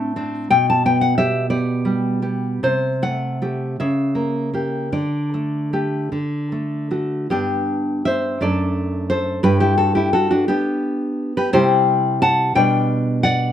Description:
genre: romantic piece for solo classical guitar.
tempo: 48-61 BPM (dotted quarters).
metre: 6/8.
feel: rubato.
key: G major.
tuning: A4 = 441 Hz.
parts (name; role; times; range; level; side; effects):
nylon-string guitar; solo; 0.0-13.5 s; F#2 to A5; -17 LUFS; equal; none.
room: moderate studio reverb, RT60 0.7 s.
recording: none.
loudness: -17 LUFS.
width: side -10 dB against mid.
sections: 0.0-7.3 A section; 7.3-13.5 B section.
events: none.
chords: 0.0 D7(no3)/A; 0.5 G/B; 2.6 Am7/C; 3.8 C#dim7; 4.9 Dsus4; 6.1 D; 7.3 G; 8.4 D/F#; 9.4 G; 11.5 C; 12.6 G/B.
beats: | 0.51 1.51 | 2.64 3.79 | 4.94 6.12 | 7.30 8.40 | 9.43 10.47 | 11.52 12.55.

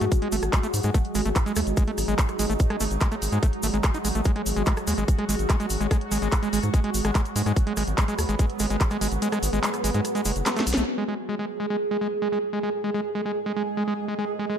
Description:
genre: psychedelic trance.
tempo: 145 BPM.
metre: 4/4.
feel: straight.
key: G# minor.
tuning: A4 = 440 Hz.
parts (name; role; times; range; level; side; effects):
bubbling stepped-filter texture; sustained chords; 0.0-14.6 s; F#3 to G#4; -30 LUFS; right 2 dB; chorus, built-in reverb, sidechain pumping.
overdriven acid bass; riff; 0.0-14.6 s; G#3 to D#4; -29 LUFS; equal; distortion, auto-pan, sidechain pumping, dub echo.
round analog bass; bass; 0.0-10.8 s; F#1 to G#2; -27 LUFS; equal; none.
drum and bass drum kit; drums; 0.0-10.9 s; handclaps, hi-hat, rim click, snare drum; -30 LUFS; equal; low-pass filter on hats, low-pass filter on snare.
tube shaker; percussion; 0.0-10.9 s; none; -35 LUFS; left 2 dB; none.
deep dark ambient pad; texture; 0.0-14.6 s; G#3 to D#6; -33 LUFS; right 1 dB; chorus, built-in reverb, sidechain pumping.
electronic kick drum; drums; 0.1-8.9 s; none; -22 LUFS; equal; none.
room: light reverb.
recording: none.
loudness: -22 LUFS.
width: side -8 dB against mid.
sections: 0.0-10.9 A section; 10.9-14.6 B section.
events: kick drops out 9.2-10.9; drum fill 10.5-10.9; band accent 10.7.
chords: 0.0 G#5.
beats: 0.12 0.53 | 0.94 1.36 1.77 2.19 | 2.60 3.01 3.43 3.84 | 4.25 4.67 5.08 5.50 | 5.91 6.32 6.74 7.15 | 7.57 7.98 8.39 8.81 | 9.22 9.63 10.05 10.46 | 10.88 11.29 11.70 12.12 | 12.53 12.94 13.36 13.77 | 14.19.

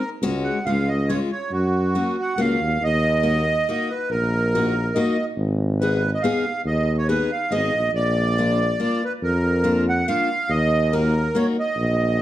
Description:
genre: alpine folk, alpine dance band.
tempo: 140 BPM.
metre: 3/4.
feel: swing 54% on 8ths.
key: Eb minor.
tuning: A4 = 440 Hz.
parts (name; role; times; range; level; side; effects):
accordion; melody; 0.0-12.2 s; F#4 to F#5; -23 LUFS; right 2 dB; light tremolo tuning.
picked steel-string acoustic guitar; accompaniment; 0.2-11.6 s; G#3 to Ab4; -25 LUFS; left 3 dB; none.
warm tuba; bass; 0.2-12.2 s; Ab1 to F#2; -22 LUFS; equal; none.
room: moderate recital hall reverb, RT60 1.4 s.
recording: dark, warm production.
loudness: -19 LUFS.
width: side -13 dB against mid.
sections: 0.0-2.8 A section; 2.8-12.2 B section.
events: none.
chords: 0.2 C#sus4; 0.7 C#; 1.5 F#; 2.8 Ebm; 5.4 Abm; 7.9 Bb; 10.5 Ebm.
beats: | 0.23 0.66 1.09 | 1.51 1.94 2.37 | 2.80 3.23 3.66 | 4.09 4.52 4.95 | 5.37 5.80 6.22 | 6.65 7.08 7.51 | 7.94 8.37 8.79 | 9.22 9.64 10.07 | 10.50 10.92 11.35 | 11.78 12.21.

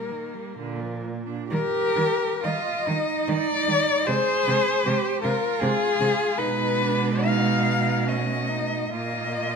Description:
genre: classical, lyrical piece for cello ensemble.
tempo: 62-80 BPM.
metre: 3/4.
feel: rubato.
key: Eb major.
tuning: A4 = 441 Hz.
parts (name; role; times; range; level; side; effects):
dark cello; melody; 0.0-9.6 s; Ab4 to F5; -24 LUFS; left 5 dB; none.
clear cello; second line; 0.0-9.6 s; D3 to Ab4; -28 LUFS; right 8 dB; none.
rich cello; accompaniment; 0.0-9.6 s; G3 to Bb3; -31 LUFS; right 3 dB; none.
rich cello; bass; 0.6-9.6 s; Bb2 to Eb3; -29 LUFS; right 3 dB; none.
room: moderate recital hall reverb, RT60 1.7 s.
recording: minimal, uncompressed stereo recording.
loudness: -21 LUFS.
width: side -5 dB against mid.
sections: 0.0-1.5 A section; 1.5-9.6 B section.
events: none.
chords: 0.0 Eb; 4.1 Ab/C; 6.4 Abm/Cb; 8.1 B7; 8.9 Bb5.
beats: 0.58 | 1.50 2.43 3.27 | 4.06 4.85 5.61 | 6.38 7.23 8.07 | 8.93.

